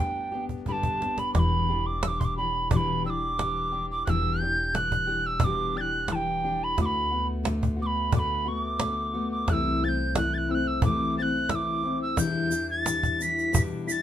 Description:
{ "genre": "acoustic folk duo or small band", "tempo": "89 BPM", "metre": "4/4", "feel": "straight", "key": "unclear", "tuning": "A4 = 440 Hz", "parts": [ { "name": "wooden whistle", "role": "melody", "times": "0.0-14.0 s", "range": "G5 to B6", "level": "-28 LUFS", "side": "right 2 dB", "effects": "none" }, { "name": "picked steel-string acoustic guitar", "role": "accompaniment", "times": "0.0-14.0 s", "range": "E2 to G4", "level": "-30 LUFS", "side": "left 4 dB", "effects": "none" }, { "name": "upright bass", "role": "bass", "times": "0.0-14.0 s", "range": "E1 to E2", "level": "-33 LUFS", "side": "equal", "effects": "none" }, { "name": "cajon", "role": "percussion", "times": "0.2-13.7 s", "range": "none", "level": "-26 LUFS", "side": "right 1 dB", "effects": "none" }, { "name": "egg shaker", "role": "percussion", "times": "12.2-14.0 s", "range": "none", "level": "-36 LUFS", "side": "right 7 dB", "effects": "none" } ], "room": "moderate studio reverb, RT60 0.6 s", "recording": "minimal, uncompressed stereo recording", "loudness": "-24 LUFS", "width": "side -11 dB against mid", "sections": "0.0-1.4 A section; 1.4-14.0 B section", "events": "drum fill 0.5-1.4", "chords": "0.0 G; 1.4 Em7; 6.8 D6; 9.5 Am/C; 12.2 Em7", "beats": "0.67 | 1.35 2.03 2.71 3.39 | 4.07 4.74 5.42 6.10 | 6.78 7.45 8.13 8.81 | 9.48 10.16 10.84 11.51 | 12.19 12.86 13.54" }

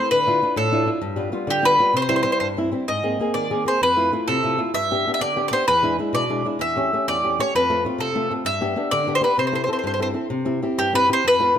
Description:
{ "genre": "italian folk, Italian serenade", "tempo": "130 BPM (dotted quarters)", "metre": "6/8", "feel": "straight", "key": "C major", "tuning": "A4 = 440 Hz", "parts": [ { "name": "bowl-back mandolin", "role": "melody", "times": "0.0-11.5 s", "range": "G4 to E5", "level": "-20 LUFS", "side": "equal", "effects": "none" }, { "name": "flamenco guitar", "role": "accompaniment", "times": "0.0-11.6 s", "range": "E2 to A4", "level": "-24 LUFS", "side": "left 1 dB", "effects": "none" } ], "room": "light reverb", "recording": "close, detailed microphones", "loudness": "-18 LUFS", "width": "side -9 dB against mid", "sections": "0.0-2.9 A section; 2.9-10.3 B section; 10.3-11.6 A section", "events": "none", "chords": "0.1 Dmadd9; 1.0 G7; 1.9 C; 2.9 Abadd9; 3.8 Fmaj7; 4.7 G; 5.7 E7; 6.6 A7/E; 7.5 F; 8.4 G; 9.4 C6; 10.3 C", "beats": "| 0.11 0.56 | 1.02 1.48 | 1.94 2.41 | 2.88 3.34 | 3.81 4.27 | 4.73 5.19 | 5.65 6.12 | 6.59 7.06 | 7.53 7.99 | 8.45 8.91 | 9.37 9.84 | 10.30 10.77 | 11.23" }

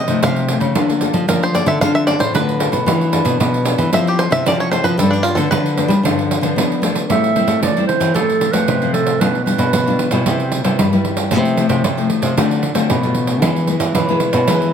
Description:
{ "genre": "samba and choro", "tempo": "114 BPM", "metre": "4/4", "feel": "straight", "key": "A minor from 7.1 s", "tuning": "A4 = 440 Hz", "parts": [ { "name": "bluegrass banjo", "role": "melody", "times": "0.0-6.3 s", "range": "D4 to F5", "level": "-19 LUFS", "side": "equal", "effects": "none" }, { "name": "nylon-string guitar", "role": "accompaniment", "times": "0.0-14.7 s", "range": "G2 to A4", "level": "-20 LUFS", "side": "left 4 dB", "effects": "none" }, { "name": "nylon-string guitar", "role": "bass", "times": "0.0-14.7 s", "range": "A2 to B3", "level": "-18 LUFS", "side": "left 1 dB", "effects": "none" }, { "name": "pandeiro", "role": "percussion", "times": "0.1-14.7 s", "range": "none", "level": "-20 LUFS", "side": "right 4 dB", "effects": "none" }, { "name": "warm clarinet", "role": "second line", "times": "7.1-10.2 s", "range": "A4 to E5", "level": "-19 LUFS", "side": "right 7 dB", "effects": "none" } ], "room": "moderate studio reverb, RT60 0.7 s", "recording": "close, detailed microphones", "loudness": "-14 LUFS", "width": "side -8 dB against mid", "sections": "0.0-7.1 A section; 7.1-14.7 B section", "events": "five-string banjo solo 0.0-7.1; clarinet solo 7.1-14.7", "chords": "0.0 F7/C; 0.8 Bbmaj7/D; 1.8 Dm7; 2.9 E7sus4; 3.9 Fmaj7; 5.0 G7; 7.1 Am7; 8.2 F/A; 9.2 G7/B; 10.3 Cmaj7; 11.3 Fmaj7/C; 12.4 Dm7; 13.4 E", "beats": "0.23 | 0.76 1.29 1.81 2.34 | 2.87 3.40 3.93 4.46 | 4.98 5.51 6.04 6.57 | 7.09 7.62 8.15 8.68 | 9.21 9.73 10.26 10.79 | 11.31 11.84 12.37 12.90 | 13.42 13.95 14.48" }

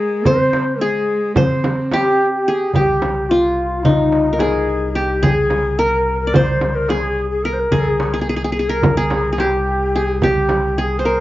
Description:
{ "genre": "Turkish makam ensemble", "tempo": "217 BPM (eighths)", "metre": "9/8", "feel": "straight", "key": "C makam nihavent", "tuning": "A4 = 439 Hz", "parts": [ { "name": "qanun", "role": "melody", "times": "0.0-11.2 s", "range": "Eb4 to D5", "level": "-18 LUFS", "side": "equal", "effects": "none" }, { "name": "breathy bright ney", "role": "second line", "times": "0.0-11.2 s", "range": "Eb4-21c to C5", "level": "-21 LUFS", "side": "left 2 dB", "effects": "none" }, { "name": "dark cello", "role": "second line", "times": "0.0-2.5 s", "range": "Ab3 to C4", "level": "-24 LUFS", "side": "right 1 dB", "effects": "none" }, { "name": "darbuka", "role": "percussion", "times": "0.3-11.1 s", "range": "none", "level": "-21 LUFS", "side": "equal", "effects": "none" }, { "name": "frame drum", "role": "percussion", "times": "0.3-10.6 s", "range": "none", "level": "-22 LUFS", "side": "right 2 dB", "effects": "none" }, { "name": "clear double bass", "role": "drone", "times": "2.7-11.2 s", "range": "C2", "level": "-24 LUFS", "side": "equal", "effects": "none" } ], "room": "moderate small room ambience, RT60 0.5 s", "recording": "worn, warbling old tape, cassette tape, warbly pitch drift, nothing above 7.5 kHz", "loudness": "-15 LUFS", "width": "side -15 dB against mid", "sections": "0.0-2.7 A section; 2.7-11.2 B section", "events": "none", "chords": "none", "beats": "| 0.25 0.53 0.80 1.08 1.36 1.63 1.91 2.19 2.46 | 2.74 3.02 3.29 3.57 3.85 4.12 4.40 4.68 4.95 | 5.23 5.51 5.79 6.06 6.34 6.62 6.89 7.17 7.45 | 7.72 8.00 8.28 8.56 8.83 9.11 9.39 9.66 9.94 | 10.22 10.50 10.77 11.05" }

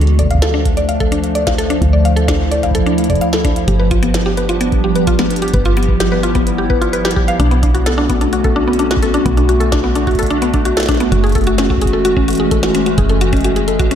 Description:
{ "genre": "IDM", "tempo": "129 BPM", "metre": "4/4", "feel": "straight", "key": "unclear", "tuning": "A4 = 439 Hz", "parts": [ { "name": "warbly tape-like pad", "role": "sustained chords", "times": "0.0-14.0 s", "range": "D3 to G#4", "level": "-18 LUFS", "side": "equal", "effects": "chorus, built-in reverb, phaser, vintage 12-bit sampler grit" }, { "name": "woody FM bass", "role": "bass", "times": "0.0-14.0 s", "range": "F#1 to D2", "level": "-17 LUFS", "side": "equal", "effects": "none" }, { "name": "glitchy drum kit", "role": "drums", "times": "0.0-14.0 s", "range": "hi-hat, snare drum", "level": "-24 LUFS", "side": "right 1 dB", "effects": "overdrive, analog delay" }, { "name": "mallet-like synth pluck", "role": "arpeggios", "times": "0.2-14.0 s", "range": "B3 to F5", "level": "-17 LUFS", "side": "left 1 dB", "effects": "chorus, analog delay" }, { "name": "electronic kick drum", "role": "drums", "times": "0.2-13.9 s", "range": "none", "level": "-18 LUFS", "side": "equal", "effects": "none" } ], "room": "moderate lush hall reverb, RT60 1.7 s, digital ambience", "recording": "dreamy mix soaked in reverb", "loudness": "-12 LUFS", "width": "side -9 dB against mid", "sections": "0.0-14.0 A section", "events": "none", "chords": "0.0 Dm; 3.7 G7; 7.4 Bm9; 11.1 F#m9", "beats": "0.42 0.89 1.35 | 1.82 2.28 2.75 3.21 | 3.68 4.14 4.61 5.07 | 5.54 6.00 6.47 6.93 | 7.40 7.86 8.33 8.79 | 9.26 9.72 10.19 10.65 | 11.12 11.59 12.05 12.52 | 12.98 13.45 13.91" }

